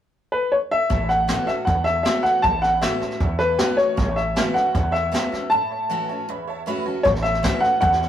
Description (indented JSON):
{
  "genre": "rockabilly",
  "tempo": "156 BPM",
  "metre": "4/4",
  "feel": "straight",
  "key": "A major",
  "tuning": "A4 = 442 Hz",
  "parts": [
    { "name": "clear upright piano", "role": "melody", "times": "0.3-8.1 s", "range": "B4 to A5", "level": "-20 LUFS", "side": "left 1 dB", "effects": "none" },
    { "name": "honky-tonk upright piano", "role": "accompaniment", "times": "0.9-8.1 s", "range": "C#5 to B5", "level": "-34 LUFS", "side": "right 5 dB", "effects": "none" },
    { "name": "picked steel-string acoustic guitar", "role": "accompaniment", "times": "0.9-8.1 s", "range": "E2 to F#4", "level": "-29 LUFS", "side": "equal", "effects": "none" },
    { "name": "upright bass", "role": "bass", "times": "0.9-8.1 s", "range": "A1 to E2", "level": "-25 LUFS", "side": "right 1 dB", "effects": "none" },
    { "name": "jazz brush drum kit", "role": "drums", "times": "0.9-8.1 s", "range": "hi-hat, kick drum, snare drum", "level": "-26 LUFS", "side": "equal", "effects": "none" }
  ],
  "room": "moderate small room reverb, RT60 0.6 s",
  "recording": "rough rehearsal-room recording",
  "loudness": "-18 LUFS",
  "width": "side -10 dB against mid",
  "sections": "0.9-7.0 A section; 7.0-8.1 B section",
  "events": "break 5.5-7.0",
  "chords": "0.0 N.C.; 0.9 A6",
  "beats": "0.14 0.52 | 0.91 1.29 1.67 2.06 | 2.44 2.83 3.21 3.60 | 3.98 4.36 4.75 5.13 | 5.52 5.90 6.28 6.67 | 7.05 7.43 7.82"
}